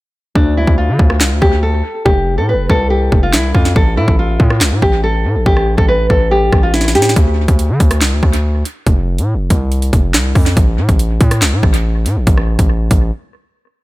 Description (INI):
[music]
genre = hip hop, drill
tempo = 141 BPM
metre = 4/4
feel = half-time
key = unclear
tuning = A4 = 444 Hz
[part]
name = nylon-string guitar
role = melody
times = 0.4-7.1 s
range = D4 to B4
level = -16 LUFS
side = equal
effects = low-pass filter, analog delay
[part]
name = distorted 808-style bass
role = bass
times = 0.4-13.1 s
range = F1 to D3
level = -14 LUFS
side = equal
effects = distortion
[part]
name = drill drum kit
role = drums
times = 0.4-13.0 s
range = handclaps, hi-hat, kick drum, rim click, snare drum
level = -13 LUFS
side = equal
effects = analog delay
[sound]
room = little or no reverb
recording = echo-heavy mix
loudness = -11 LUFS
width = side -19 dB against mid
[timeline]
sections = 0.4-13.8 A section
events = hi-hats muted 0.4-7.2; drum fill 6.7-7.2; break 13.1-13.8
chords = 0.4 Dm; 2.1 F5; 3.8 N.C.; 8.9 F5; 10.6 N.C.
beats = | 0.35 0.78 1.21 1.63 | 2.06 2.48 2.91 3.33 | 3.76 4.18 4.61 5.04 | 5.46 5.89 6.31 6.74 | 7.16 7.59 8.01 8.44 | 8.87 9.29 9.72 10.14 | 10.57 10.99 11.42 11.84 | 12.27 12.70